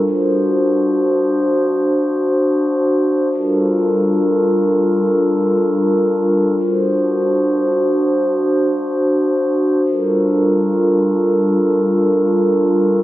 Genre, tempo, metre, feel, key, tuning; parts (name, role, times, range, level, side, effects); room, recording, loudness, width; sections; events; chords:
hip hop; free time; G minor; A4 = 441 Hz
glass harmonica; solo; 0.0-13.0 s; G3 to C5; -14 LUFS; equal; tape echo
light reverb, small room ambience; dark, warm production; -14 LUFS; side -15 dB against mid
0.0-13.0 A section
0.0 D7; 3.3 Gm7; 6.6 D7; 9.8 Gm7